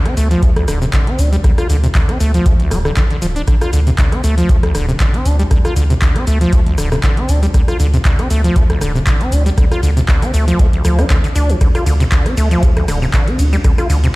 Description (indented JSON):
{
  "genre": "acid house",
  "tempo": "118 BPM",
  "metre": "4/4",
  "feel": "swing 55% on 16ths",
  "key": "D minor pentatonic",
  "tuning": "A4 = 440 Hz",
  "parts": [
    { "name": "acid bass, saw", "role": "riff", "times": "0.0-14.1 s", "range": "D2 to F4", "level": "-18 LUFS", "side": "equal", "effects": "tube saturation, sidechain pumping, dub echo" },
    { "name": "booming analog drum machine", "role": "drums", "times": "0.1-14.1 s", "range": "handclaps, hi-hat, ride cymbal, rim click, shaker", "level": "-23 LUFS", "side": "left 1 dB", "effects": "none" },
    { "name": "round analog bass", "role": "bass", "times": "0.2-14.1 s", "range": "D1 to D2", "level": "-14 LUFS", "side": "equal", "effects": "sidechain pumping" },
    { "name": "electronic kick drum", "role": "drums", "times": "0.4-13.8 s", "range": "none", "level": "-14 LUFS", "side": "equal", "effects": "none" }
  ],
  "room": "little or no reverb",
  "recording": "played on a big sound system in a bare room, large studio reverb",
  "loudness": "-11 LUFS",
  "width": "side -21 dB against mid",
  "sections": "0.0-14.2 A section",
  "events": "none",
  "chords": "0.0 Dm"
}